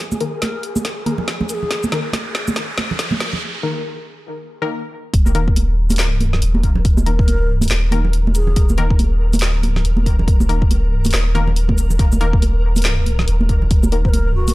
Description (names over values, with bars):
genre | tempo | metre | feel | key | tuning
deep dubstep | 140 BPM | 4/4 | swing 59% on 16ths, half-time | unclear | A4 = 440 Hz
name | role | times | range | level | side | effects
riser | sound effects | 0.2-3.4 s | none | -30 LUFS | right 1 dB | none
flickering grainy texture | texture | 0.0-14.5 s | Ab4 to Bb4 | -33 LUFS | equal | built-in reverb
deep house drum kit | drums | 0.1-14.5 s | handclaps, hi-hat, shaker, snare drum | -24 LUFS | equal | none
congas | percussion | 0.1-14.5 s | none | -24 LUFS | right 2 dB | dub echo
filtered dub chord stab | stabs | 0.2-14.1 s | Eb3 to Bb4 | -26 LUFS | left 3 dB | chorus, dub echo
breathy low ney | melody | 0.3-1.8, 7.2-8.7, 14.0-14.5 s | Gb4 to C5 | -29 LUFS | left 1 dB | low-pass filter, dub echo
electronic kick drum | drums | 0.4-14.1 s | none | -16 LUFS | equal | high-pass filter on kick
saturated sub bass | bass | 5.1-14.5 s | Eb1 | -16 LUFS | equal | none
room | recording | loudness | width
little or no reverb | dry, gritty hardware recording | -15 LUFS | side -19 dB against mid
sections
0.0-5.1 A section; 5.1-14.5 B section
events
build-up 0.0-5.1; drum fill 0.0-3.4; filter sweep on synth stab 0.0-5.1; filter sweep on ney 0.0-5.1; riser 0.2-3.4; break 3.4-5.1; drop 5.1-14.5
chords
0.0 Eb5